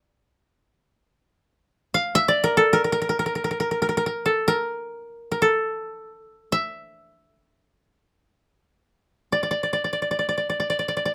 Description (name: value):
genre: japanese traditional, Japanese chamber music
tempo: free time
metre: none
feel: none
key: D hirajoshi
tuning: A4 = 441 Hz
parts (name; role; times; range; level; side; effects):
- koto; solo; 0.0-11.1 s; A4 to F5; -23 LUFS; equal; none
room: little or no reverb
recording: close, detailed microphones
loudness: -23 LUFS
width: mono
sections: 0.0-11.1 A section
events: none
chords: none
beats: free time